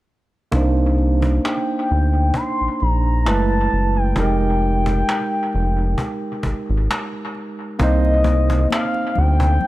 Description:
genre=R&B, neo-soul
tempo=66 BPM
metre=4/4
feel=swing 53% on 16ths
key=C minor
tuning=A4 = 440 Hz
part: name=barky tine electric piano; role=accompaniment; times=0.5-9.7 s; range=G3 to C5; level=-22 LUFS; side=right 2 dB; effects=auto-pan, low-pass filter
part: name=round analog bass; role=bass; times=0.5-9.6 s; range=F1 to D2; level=-17 LUFS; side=equal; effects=none
part: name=cajon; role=drums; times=0.5-9.7 s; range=none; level=-27 LUFS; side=equal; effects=analog delay
part: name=gliding portamento lead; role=melody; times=1.4-9.7 s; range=Eb5 to C6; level=-23 LUFS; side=left 1 dB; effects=chorus, low-pass filter, analog delay
part: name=congas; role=percussion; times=7.8-9.7 s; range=none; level=-30 LUFS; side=left 8 dB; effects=analog delay
room=light reverb, small room reverb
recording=echo-heavy mix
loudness=-16 LUFS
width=side -16 dB against mid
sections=0.5-7.8 A section; 7.8-9.7 B section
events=none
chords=0.5 Cm9; 3.2 F#m11; 4.2 Fm11; 7.8 Cm9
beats=| 0.52 1.43 2.34 3.25 | 4.16 5.07 5.98 6.89 | 7.79 8.70 9.61

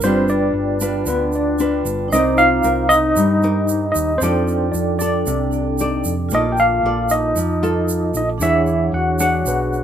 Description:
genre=bossa nova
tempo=114 BPM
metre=4/4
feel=straight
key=Bb major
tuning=A4 = 440 Hz
part: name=tine electric piano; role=melody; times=0.0-9.8 s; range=B4 to G5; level=-19 LUFS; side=right 1 dB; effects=medium tremolo
part: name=reedy alto flute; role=second line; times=0.0-9.8 s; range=B3 to G4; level=-25 LUFS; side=left 2 dB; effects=none
part: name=nylon-string guitar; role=accompaniment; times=0.0-9.8 s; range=B2 to D5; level=-21 LUFS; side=left 1 dB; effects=none
part: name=vibraphone with medium hard mallets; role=accompaniment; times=0.0-9.8 s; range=D4 to D6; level=-26 LUFS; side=right 4 dB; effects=none
part: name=hollow-body short-scale fingered electric bass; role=bass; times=0.0-9.8 s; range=G1 to G2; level=-23 LUFS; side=equal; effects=none
part: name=egg shaker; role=percussion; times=0.0-9.8 s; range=none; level=-28 LUFS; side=right 5 dB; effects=none
room=light reverb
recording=minimal, uncompressed stereo recording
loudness=-15 LUFS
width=side -9 dB against mid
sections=0.0-9.8 A section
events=none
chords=0.0 G7; 2.1 Cm9; 4.2 F13; 6.3 Bbmaj7; 8.4 E13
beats=| 0.02 0.54 1.07 1.59 | 2.12 2.64 3.17 3.69 | 4.21 4.74 5.26 5.79 | 6.31 6.84 7.36 7.89 | 8.41 8.94 9.46

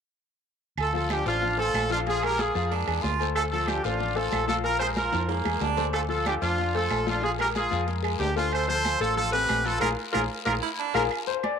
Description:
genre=latin, salsa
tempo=186 BPM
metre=4/4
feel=straight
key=unclear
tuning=A4 = 439 Hz
part: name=brilliant horn section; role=melody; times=0.8-11.0 s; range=D4 to C5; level=-26 LUFS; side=right 1 dB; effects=none
part: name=hollow-body short-scale fingered electric bass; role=bass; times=0.8-11.1 s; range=A1 to F2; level=-31 LUFS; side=right 1 dB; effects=none
part: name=agogo bells and timbales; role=percussion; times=0.8-11.6 s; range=none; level=-34 LUFS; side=right 11 dB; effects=none
part: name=claves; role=percussion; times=0.8-11.6 s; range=none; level=-38 LUFS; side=right 13 dB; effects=none
part: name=congas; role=percussion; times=0.8-11.6 s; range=none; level=-36 LUFS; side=left 1 dB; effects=none
part: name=guiro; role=percussion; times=0.8-11.0 s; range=none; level=-41 LUFS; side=left 13 dB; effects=none
part: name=clear concert grand piano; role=accompaniment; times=0.9-11.6 s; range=F3 to F5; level=-31 LUFS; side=left 12 dB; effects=none
part: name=edgy baritone saxophone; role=second line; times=2.7-3.3, 5.3-5.9, 10.6-11.1 s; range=Bb3 to F4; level=-32 LUFS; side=right 8 dB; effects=none
room=wet spring reverb, RT60 1.6 s, small room ambience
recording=1960s-style stereo with parts hard left and right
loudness=-24 LUFS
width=side -7 dB against mid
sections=0.8-11.1 A section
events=drum fill 5.1-5.9, 10.3-11.1; band accent 9.8-11.1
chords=0.8 Dm7; 2.1 Bb7; 3.4 Dm7; 4.6 Bb7; 5.9 Dm7; 7.2 Bb7; 8.5 Dm7; 9.8 Bb7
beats=| 0.78 1.10 1.42 1.75 | 2.07 2.39 2.71 3.04 | 3.36 3.68 4.00 4.33 | 4.65 4.97 5.29 5.62 | 5.94 6.26 6.59 6.91 | 7.23 7.56 7.88 8.20 | 8.53 8.85 9.17 9.49 | 9.82 10.14 10.46 10.79 | 11.11 11.43

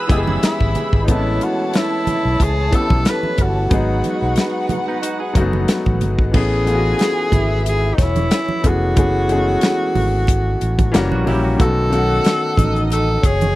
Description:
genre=lush 1970s-style soul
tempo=91 BPM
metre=4/4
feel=swing 54% on 16ths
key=unclear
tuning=A4 = 440 Hz
part: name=dark studio violin section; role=second line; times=0.0-13.6 s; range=C#4 to E6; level=-26 LUFS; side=equal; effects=none
part: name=clear baby grand piano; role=accompaniment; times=0.0-13.6 s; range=D#3 to A4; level=-22 LUFS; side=left 2 dB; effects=none
part: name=semi-hollow electric guitar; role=riff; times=0.0-6.1, 11.1-11.8 s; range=B3 to G#4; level=-28 LUFS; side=right 5 dB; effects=spring reverb
part: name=fingered electric bass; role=bass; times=0.1-13.5 s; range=E1 to C#2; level=-20 LUFS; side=equal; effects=none
part: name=modern studio drum kit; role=drums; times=0.1-13.6 s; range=crash cymbal, hi-hat, kick drum, snare drum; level=-17 LUFS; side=equal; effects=none
part: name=congas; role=percussion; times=0.3-13.6 s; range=none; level=-26 LUFS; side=right 4 dB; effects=none
part: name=bright tenor saxophone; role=melody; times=0.4-13.6 s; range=D#4 to B4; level=-21 LUFS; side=equal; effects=none
room=little or no reverb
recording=dry, close 1970s-style studio recording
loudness=-15 LUFS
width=side -17 dB against mid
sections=0.0-6.3 A section; 6.3-13.6 B section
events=none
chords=0.0 Emaj7; 1.1 Amaj9; 3.7 G#m7; 6.3 Amaj9; 9.0 F#m11; 10.9 F#7b9; 11.6 B9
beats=0.42 | 1.08 1.74 2.40 3.05 | 3.71 4.37 5.03 5.68 | 6.34 7.00 7.66 8.31 | 8.97 9.63 10.28 10.94 | 11.59 12.25 12.91

